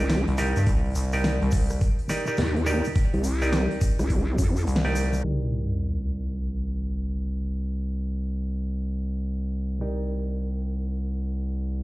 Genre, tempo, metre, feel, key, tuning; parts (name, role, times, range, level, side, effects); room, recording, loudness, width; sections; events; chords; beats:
glitch hop; 105 BPM; 4/4; swing 63% on 16ths; C minor; A4 = 441 Hz
clav; stabs; 0.0-11.8 s; Eb4 to D5; -31 LUFS; right 1 dB; sidechain pumping, digital delay
vowel-sweep wobble bass; bass; 0.0-4.7 s; C2 to F2; -23 LUFS; equal; chorus, tube saturation
pop drum kit; drums; 0.1-5.4 s; crash cymbal, hi-hat, rim click, snare drum; -32 LUFS; equal
egg shaker; percussion; 0.1-5.2 s; -42 LUFS; left 2 dB
gritty driven synth bass; bass; 0.3-11.8 s; C2 to G2; -26 LUFS; equal; distortion, tube saturation
electronic kick drum; drums; 0.7-4.5 s; -23 LUFS; equal
sub drop; sound effects; 5.2-7.5 s; -31 LUFS; equal
little or no reverb; played on a big sound system in a bare room, stone room reverb, vinyl crackle, low-pass filter; -24 LUFS; side -18 dB against mid
0.0-5.2 A section; 5.2-11.8 B section
kick drops out 4.7-5.2; band accent 4.7; impact 5.2-7.5; filter sweep 5.2-11.8
0.0 Cm7
0.10 | 0.67 1.24 1.81 2.38 | 2.96 3.53 4.10 4.67 | 5.24 5.81 6.38 6.96 | 7.53 8.10 8.67 9.24 | 9.81 10.38 10.96 11.53